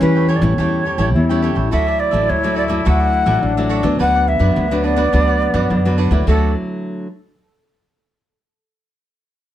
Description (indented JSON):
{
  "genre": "samba",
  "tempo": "105 BPM",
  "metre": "4/4",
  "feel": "straight",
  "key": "D major",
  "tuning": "A4 = 439 Hz",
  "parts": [
    { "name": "mellow jazz flute", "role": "melody", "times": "0.0-6.5 s", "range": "A4 to F#5", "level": "-19 LUFS", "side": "equal", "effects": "none" },
    { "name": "warm trombone", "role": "second line", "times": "0.0-6.5 s", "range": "A3 to E4", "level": "-23 LUFS", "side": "left 5 dB", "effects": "none" },
    { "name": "nylon-string guitar", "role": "accompaniment", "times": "0.0-7.1 s", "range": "A2 to E4", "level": "-22 LUFS", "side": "left 1 dB", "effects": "none" },
    { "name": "upright bass", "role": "bass", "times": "0.0-6.5 s", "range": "A1 to F#2", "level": "-17 LUFS", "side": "equal", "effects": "none" },
    { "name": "cavaquinho", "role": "accompaniment", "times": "0.2-6.5 s", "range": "D4 to G5", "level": "-26 LUFS", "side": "right 6 dB", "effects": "none" }
  ],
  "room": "moderate studio reverb, RT60 0.6 s",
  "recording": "dark, warm production",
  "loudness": "-14 LUFS",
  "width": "side -12 dB against mid",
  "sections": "0.0-1.7 A section; 1.7-6.3 B section; 6.3-8.5 C section",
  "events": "none",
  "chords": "0.0 A7; 1.7 Dadd9; 4.0 Bm/D; 6.3 Dadd9"
}